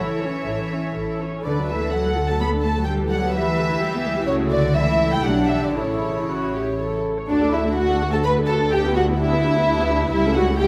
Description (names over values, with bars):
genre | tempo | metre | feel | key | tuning
quick classical-period movement for string orchestra | 114-130 BPM | 3/4 | rubato | D major | A4 = 439 Hz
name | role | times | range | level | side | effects
warm symphonic violin section | melody | 0.0-10.7 s | C#5 to B5 | -29 LUFS | equal | none
dark studio violin section | second line | 0.0-10.7 s | D4 to C#5 | -26 LUFS | equal | none
dark chamber viola section | accompaniment | 0.0-10.7 s | D3 to C#5 | -27 LUFS | equal | none
dark symphonic double bass section | bass | 0.0-10.7 s | A1 to D2 | -29 LUFS | equal | none
warm symphonic cello section | bass | 0.0-10.7 s | C#2 to B3 | -29 LUFS | equal | none
room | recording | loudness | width
wet recital hall reverb, RT60 1.5 s | recorded in a church or concert hall | -21 LUFS | mono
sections
0.0-7.3 A section; 7.3-10.7 A section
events
none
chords
0.0 A; 1.5 D; 2.9 Em7/D; 4.3 A/C#; 5.2 G/B; 5.8 A; 7.3 D; 8.7 Em7/D; 10.1 A7/C#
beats
0.47 0.97 | 1.46 1.94 2.42 | 2.88 3.35 3.81 | 4.28 4.76 5.25 | 5.76 6.28 6.79 | 7.29 7.77 8.25 | 8.72 9.19 9.66 | 10.13 10.59